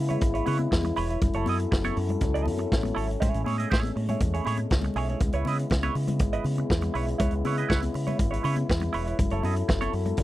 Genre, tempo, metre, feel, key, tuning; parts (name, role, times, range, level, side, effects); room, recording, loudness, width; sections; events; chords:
disco; 120 BPM; 4/4; straight; C# minor; A4 = 441 Hz
warm French horn section; sustained chords; 0.0-10.2 s; C#3 to A4; -32 LUFS; left 3 dB
fingered electric bass with an envelope filter; bass; 0.0-10.2 s; E1 to C#3; -28 LUFS; equal
semi-hollow electric guitar; accompaniment; 0.1-10.2 s; E4 to D#5; -31 LUFS; right 6 dB; wah
vintage drum kit; drums; 0.1-10.2 s; hi-hat, kick drum, snare drum; -27 LUFS; equal
congas; percussion; 0.1-10.2 s; -35 LUFS; left 4 dB
little or no reverb; dry, close 1970s-style studio recording; -24 LUFS; side -15 dB against mid
0.0-10.2 A section
0.0 C#m7; 1.2 F#m7; 3.2 Amaj7; 5.2 C#m7; 9.2 F#m7